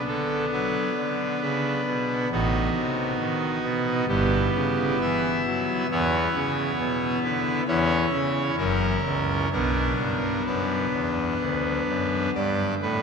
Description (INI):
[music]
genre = classical, chorale-style piece for pipe organ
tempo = 63-68 BPM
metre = 4/4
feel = rubato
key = B minor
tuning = A4 = 442 Hz
[part]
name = pipe organ, trumpet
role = solo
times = 0.0-13.0 s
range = F#1 to E5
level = -22 LUFS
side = equal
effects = none
[sound]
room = wet cathedral reverb, RT60 6.5 s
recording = none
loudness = -22 LUFS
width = side -5 dB against mid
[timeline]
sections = 0.0-13.0 A section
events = none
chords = 0.0 Bm; 2.3 B7/A; 4.1 Em/G; 5.9 E5; 7.7 C#m/E; 8.6 F#7; 9.5 Bm